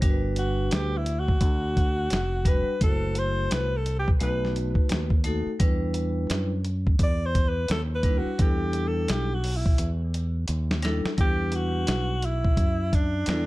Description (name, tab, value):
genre	hip hop, jazz-hop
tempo	86 BPM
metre	4/4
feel	swing 60% on 16ths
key	E minor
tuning	A4 = 443 Hz
part	vibraphone with hard mallets	accompaniment	0.0-13.5 s	G3 to C5	-31 LUFS	left 1 dB	plate reverb
part	fingered electric bass	bass	0.0-13.5 s	F1 to F#2	-27 LUFS	equal	none
part	dusty soul sampler-style drum kit	drums	0.0-13.5 s	hi-hat, kick drum, snare drum	-24 LUFS	equal	none
part	breathy alto saxophone	melody	0.4-13.5 s	D4 to D5	-29 LUFS	equal	plate reverb
room	light reverb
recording	dark, warm production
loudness	-23 LUFS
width	side -19 dB against mid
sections	0.0-11.2 A section; 11.2-13.5 B section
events	alto saxophone solo 0.0-11.2; drum fill 9.8-11.2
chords	0.0 Gmaj7; 2.8 F#m7b5; 4.2 B7; 5.6 Em7